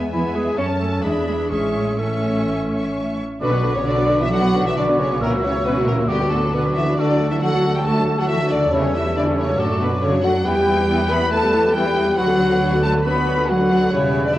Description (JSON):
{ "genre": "quick classical-period movement for symphony orchestra", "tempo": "136 BPM", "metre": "4/4", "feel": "rubato", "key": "A major, B minor from 3.4 s", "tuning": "A4 = 443 Hz", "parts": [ { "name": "clear studio violin section", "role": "melody", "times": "0.0-14.4 s", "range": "G4 to C#6", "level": "-27 LUFS", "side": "left 2 dB", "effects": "none" }, { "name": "rich chamber violin section", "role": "second line", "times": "0.0-14.3 s", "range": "A3 to A5", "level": "-30 LUFS", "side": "left 2 dB", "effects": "none" }, { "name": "rich studio viola section", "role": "accompaniment", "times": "0.0-14.4 s", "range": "C#3 to D4", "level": "-25 LUFS", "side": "equal", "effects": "none" }, { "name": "dark French horn section", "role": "sustained chords", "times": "0.0-14.4 s", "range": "E3 to B4", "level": "-24 LUFS", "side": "left 2 dB", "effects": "none" }, { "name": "rich chamber double bass section", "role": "bass", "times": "0.0-14.4 s", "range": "E1 to F#2", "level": "-25 LUFS", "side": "right 2 dB", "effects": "none" }, { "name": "mellow clarinet", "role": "second line", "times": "0.1-14.4 s", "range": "E4 to C#5", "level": "-28 LUFS", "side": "left 1 dB", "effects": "none" }, { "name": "rich studio cello section", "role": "bass", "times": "0.1-14.4 s", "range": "G2 to C#4", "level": "-24 LUFS", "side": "right 2 dB", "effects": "none" }, { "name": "mellow concert flute", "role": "second line", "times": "3.4-14.4 s", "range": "G4 to B5", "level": "-26 LUFS", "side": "left 1 dB", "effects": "none" }, { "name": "warm cor anglais", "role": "second line", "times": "3.4-14.3 s", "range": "A4 to E5", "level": "-26 LUFS", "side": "right 1 dB", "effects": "none" } ], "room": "wet recital hall reverb, RT60 1.3 s", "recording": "worn, warbling old tape, cassette tape, warbly pitch drift", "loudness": "-16 LUFS", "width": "side -14 dB against mid", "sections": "0.0-3.4 A section; 3.4-14.4 B section", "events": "none", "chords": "0.0 E; 0.6 F#m; 1.0 E7; 1.5 A; 3.4 Bm; 5.2 F#7/C#; 6.1 Bm/D; 7.0 D; 8.7 A7/E; 9.6 D/F#; 10.5 Em; 12.2 Bm/D" }